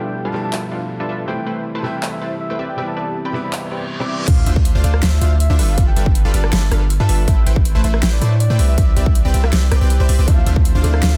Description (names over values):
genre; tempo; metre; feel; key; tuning
future bass; 160 BPM; 4/4; half-time; unclear; A4 = 440 Hz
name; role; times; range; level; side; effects
soft octave-layered synth lead; melody; 0.0-11.2 s; C5 to D6; -31 LUFS; equal; chorus, sidechain pumping, dub echo
bright grand piano; accompaniment; 0.0-4.3, 10.3-11.2 s; B2 to E4; -29 LUFS; equal; sidechain pumping, dub echo
supersaw stab; riff; 0.0-11.2 s; D3 to A5; -27 LUFS; equal; sidechain pumping, low-pass filter
big-room dance drum kit; drums; 0.5-11.1 s; crash cymbal, handclaps, hi-hat, rim click, snare drum; -26 LUFS; equal; none
reverse cymbal and sub drop; sound effects; 3.7-5.8 s; none; -30 LUFS; equal; none
long sustained 808-style bass; bass; 4.3-11.2 s; G1 to A2; -17 LUFS; equal; sidechain pumping
electronic kick drum; drums; 4.3-10.6 s; none; -17 LUFS; equal; none
room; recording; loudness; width
little or no reverb; dense, heavily limited modern master; -17 LUFS; mono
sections
0.0-4.3 A section; 4.3-11.2 B section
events
reverse cymbal 3.7-4.3; drop 4.3-11.2; impact 4.3-5.8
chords
0.0 G13; 1.3 Am7; 2.6 Cmaj7; 4.3 Dm9; 5.6 G13; 7.3 Am7; 8.6 Cmaj7; 10.3 Dm9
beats
0.15 0.53 0.90 | 1.28 1.65 2.03 2.40 | 2.78 3.15 3.53 3.90 | 4.28 4.65 5.03 5.40 | 5.78 6.15 6.53 6.90 | 7.28 7.65 8.03 8.40 | 8.78 9.15 9.53 9.90 | 10.28 10.65 11.03